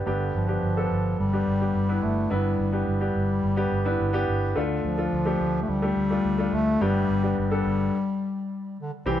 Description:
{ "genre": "piano-driven pop", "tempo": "107 BPM", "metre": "4/4", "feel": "straight", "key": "unclear", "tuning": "A4 = 439 Hz", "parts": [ { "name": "clear baby grand piano", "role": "accompaniment", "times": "0.0-9.2 s", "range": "G2 to A4", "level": "-27 LUFS", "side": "equal", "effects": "none" }, { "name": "mellow bass clarinet", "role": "melody", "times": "0.1-9.2 s", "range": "D3 to A3", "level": "-26 LUFS", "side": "left 2 dB", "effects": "tape echo" }, { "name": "vintage muted fingered electric bass", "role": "bass", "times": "0.1-9.2 s", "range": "G1 to D2", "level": "-28 LUFS", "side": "right 1 dB", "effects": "none" } ], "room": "moderate large studio reverb, RT60 1.2 s", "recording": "band playing live in one room, nothing above 10.9 kHz", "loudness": "-22 LUFS", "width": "side -11 dB against mid", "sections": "0.1-9.1 A section", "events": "stop 7.9-9.1", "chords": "0.1 G; 4.6 Dm; 6.8 G" }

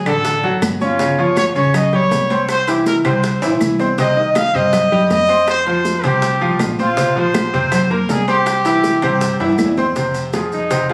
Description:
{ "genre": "latin, salsa", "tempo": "161 BPM", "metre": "4/4", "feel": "straight", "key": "unclear", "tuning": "A4 = 440 Hz", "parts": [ { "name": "warm trumpet", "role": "melody", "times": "0.0-10.9 s", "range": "Eb4 to F5", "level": "-20 LUFS", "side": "equal", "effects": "none" }, { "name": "bright concert grand piano", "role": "accompaniment", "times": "0.1-10.9 s", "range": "C3 to Db6", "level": "-20 LUFS", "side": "equal", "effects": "none" }, { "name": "upright bass", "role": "bass", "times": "0.1-10.9 s", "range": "G1 to G2", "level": "-27 LUFS", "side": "equal", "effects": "none" }, { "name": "claves", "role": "percussion", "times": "0.1-9.8 s", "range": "none", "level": "-33 LUFS", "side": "equal", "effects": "none" }, { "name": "maracas", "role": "percussion", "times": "0.1-10.9 s", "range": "none", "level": "-36 LUFS", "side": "equal", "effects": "none" }, { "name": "timbales", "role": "percussion", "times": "0.1-10.9 s", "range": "none", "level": "-30 LUFS", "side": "equal", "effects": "none" }, { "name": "bongos", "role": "percussion", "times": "0.2-10.9 s", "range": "none", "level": "-30 LUFS", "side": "equal", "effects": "none" }, { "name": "congas", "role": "percussion", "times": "0.3-10.9 s", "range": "none", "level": "-25 LUFS", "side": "equal", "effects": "none" } ], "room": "moderate large studio reverb, RT60 1.1 s", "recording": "recorded on a phone in the room, club reverb, compression", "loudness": "-16 LUFS", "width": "mono", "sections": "0.0-10.0 A section", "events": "drum fill 3.4-4.0, 9.4-10.0", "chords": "0.0 D; 1.0 Eb13 (rootless); 2.5 C; 4.0 Cm; 5.5 Bbsus2; 8.5 C; 10.0 Fm" }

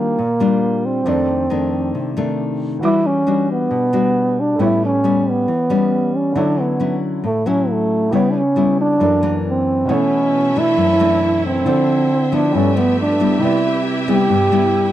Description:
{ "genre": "bossa nova", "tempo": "136 BPM", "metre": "4/4", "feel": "straight", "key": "D major, B minor from 9.9 s", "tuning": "A4 = 440 Hz", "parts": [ { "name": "mellow trombone", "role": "melody", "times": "0.0-14.9 s", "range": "A3 to G4", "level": "-17 LUFS", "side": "right 1 dB", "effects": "none" }, { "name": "nylon-string guitar", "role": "accompaniment", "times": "0.0-14.9 s", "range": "F2 to F#4", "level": "-18 LUFS", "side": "left 2 dB", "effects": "none" }, { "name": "warm baby grand piano", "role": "accompaniment", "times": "0.0-14.9 s", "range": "B2 to D6", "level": "-28 LUFS", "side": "right 3 dB", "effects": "none" }, { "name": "clear studio string section", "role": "sustained chords", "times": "9.9-14.9 s", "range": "A3 to E5", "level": "-26 LUFS", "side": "right 1 dB", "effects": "none" } ], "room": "little or no reverb", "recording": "dry, close 1970s-style studio recording", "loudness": "-14 LUFS", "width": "side -12 dB against mid", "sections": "0.0-9.9 A section; 9.9-14.9 B section", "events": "none", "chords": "0.0 Ebmaj9; 1.1 F13; 2.8 Em9; 4.6 A9; 6.4 Dmaj9; 8.1 C#m7b5; 9.0 F#7alt; 9.9 Bm11; 11.7 Dm9; 12.5 G13; 13.4 Cmaj7" }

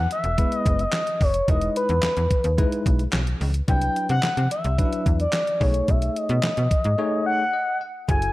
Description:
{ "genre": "early-eighties boogie funk", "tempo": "109 BPM", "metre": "4/4", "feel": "straight", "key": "E major", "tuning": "A4 = 440 Hz", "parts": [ { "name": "expressive synth lead", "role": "melody", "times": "0.0-8.3 s", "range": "B4 to G#5", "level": "-24 LUFS", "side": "left 1 dB", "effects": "chorus" }, { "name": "slap-like FM bass", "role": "bass", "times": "0.0-8.3 s", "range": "E1 to C3", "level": "-24 LUFS", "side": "equal", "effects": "none" }, { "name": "clean 12-bit digital drum machine", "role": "drums", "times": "0.1-8.3 s", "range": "handclaps, hi-hat, kick drum, snare drum", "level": "-23 LUFS", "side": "equal", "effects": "gated reverb" }, { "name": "bell-like tine electric piano", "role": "accompaniment", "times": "0.4-8.3 s", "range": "F#3 to F#5", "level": "-28 LUFS", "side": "left 1 dB", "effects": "medium stereo tremolo" } ], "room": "light reverb, digital ambience", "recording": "none", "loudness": "-20 LUFS", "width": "side -18 dB against mid", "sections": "0.0-8.1 A section", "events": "break 7.0-8.1; tine electric piano fill 7.3-8.1", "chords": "0.0 Emaj7; 3.7 Cmaj9#11; 5.6 B13" }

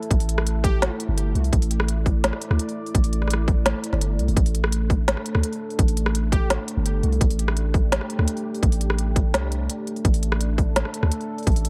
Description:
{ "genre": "half-time drum and bass", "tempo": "169 BPM", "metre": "4/4", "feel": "half-time", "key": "unclear", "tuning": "A4 = 441 Hz", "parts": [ { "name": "dark analog pad", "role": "sustained chords", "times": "0.0-11.7 s", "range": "A3 to D5", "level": "-32 LUFS", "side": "equal", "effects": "chorus, sidechain pumping" }, { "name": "organic electronic drum kit", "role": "drums", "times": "0.0-11.7 s", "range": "hi-hat, rim click, snare drum", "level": "-29 LUFS", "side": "equal", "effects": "none" }, { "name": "long sustained 808-style bass", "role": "bass", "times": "0.1-11.7 s", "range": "G1 to D2", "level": "-25 LUFS", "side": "equal", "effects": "none" }, { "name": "electronic kick drum", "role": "drums", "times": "0.1-11.5 s", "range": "none", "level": "-22 LUFS", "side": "equal", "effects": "overdrive" }, { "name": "plucky unison lead", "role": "melody", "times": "0.6-0.9, 6.3-6.6 s", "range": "G4", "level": "-37 LUFS", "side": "equal", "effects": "analog delay" } ], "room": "light reverb, digital ambience", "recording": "echo-heavy mix", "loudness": "-23 LUFS", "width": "mono", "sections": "0.0-11.7 A section", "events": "none", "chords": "0.0 A5" }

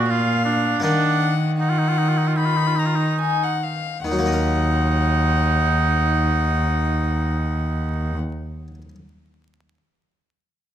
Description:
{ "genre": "classical, baroque-style sonata movement with continuo", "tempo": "71-84 BPM", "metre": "4/4", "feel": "straight", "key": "Eb minor", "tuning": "A4 = 440 Hz", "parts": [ { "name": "warm violin", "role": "melody", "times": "0.0-8.2 s", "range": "F5 to Cb6", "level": "-26 LUFS", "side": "left 8 dB", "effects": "none" }, { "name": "warm oboe", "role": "second line", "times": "0.0-8.2 s", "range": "D4 to Gb4", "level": "-24 LUFS", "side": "right 4 dB", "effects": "none" }, { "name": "harpsichord", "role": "accompaniment", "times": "0.0-9.0 s", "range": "Bb2 to Bb4", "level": "-30 LUFS", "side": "left 2 dB", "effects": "none" }, { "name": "rich cello", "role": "bass", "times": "0.0-8.2 s", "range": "Eb2 to Eb3", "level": "-21 LUFS", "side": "equal", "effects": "none" } ], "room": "moderate recital hall reverb, RT60 1.5 s", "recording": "vinyl crackle", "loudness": "-18 LUFS", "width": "side -10 dB against mid", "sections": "0.0-4.0 A section; 4.0-7.4 B section", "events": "slowing down 0.0-4.0", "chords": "0.0 Bb; 0.8 Ebm" }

